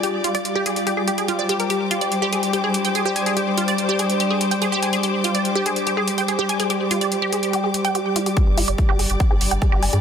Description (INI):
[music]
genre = psychedelic trance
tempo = 144 BPM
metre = 4/4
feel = straight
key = unclear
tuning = A4 = 440 Hz
[part]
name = overtone-sweeping drone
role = sustained chords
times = 0.0-10.0 s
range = G3 to G4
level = -26 LUFS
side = equal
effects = chorus, built-in reverb, sidechain pumping
[part]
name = wide unison pluck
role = riff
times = 0.0-10.0 s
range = F4 to Ab5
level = -23 LUFS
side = right 1 dB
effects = auto-pan, vintage 12-bit sampler grit, sidechain pumping, digital delay
[part]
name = electronic hi-hat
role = drums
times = 0.0-10.0 s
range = none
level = -27 LUFS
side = right 1 dB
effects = overdrive
[part]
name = dark studio string section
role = texture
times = 0.0-10.0 s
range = G3 to D6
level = -23 LUFS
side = left 2 dB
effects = sidechain pumping
[part]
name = electronic kick drum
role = drums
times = 8.4-9.7 s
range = none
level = -18 LUFS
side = equal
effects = overdrive
[part]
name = round analog bass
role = bass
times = 8.5-10.0 s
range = G1 to G2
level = -22 LUFS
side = equal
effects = none
[sound]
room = moderate plate reverb, RT60 1.6 s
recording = dense, heavily limited modern master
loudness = -18 LUFS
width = side -7 dB against mid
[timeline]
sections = 0.0-8.4 A section; 8.4-10.0 B section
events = build-up 8.4-10.0; filter sweep on synth arpeggio sound 8.4-10.0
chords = 0.0 G5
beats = | 0.03 0.45 0.87 1.28 | 1.70 2.12 2.53 2.95 | 3.37 3.78 4.20 4.62 | 5.03 5.45 5.87 6.28 | 6.70 7.12 7.53 7.95 | 8.37 8.78 9.20 9.62